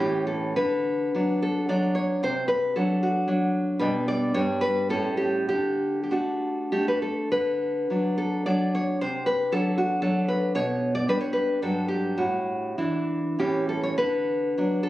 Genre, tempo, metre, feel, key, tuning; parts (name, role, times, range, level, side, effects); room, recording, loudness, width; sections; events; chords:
romantic piece for solo classical guitar; 96-117 BPM; 3/4; rubato; D major; A4 = 440 Hz
nylon-string guitar; solo; 0.0-14.9 s; G2 to D5; -23 LUFS; equal
moderate recital hall reverb, RT60 1.5 s; recorded on a phone in the room, club reverb, compression, nothing above 10.4 kHz; -23 LUFS; side -15 dB against mid
0.0-7.4 A section; 7.4-14.9 A section
0.0 A; 0.6 D; 2.2 D7/C; 3.8 G/B; 4.3 G; 4.9 A7; 5.5 D; 9.0 D7/C; 10.6 G/B; 11.6 G5; 12.2 Asus4; 13.4 A; 14.0 D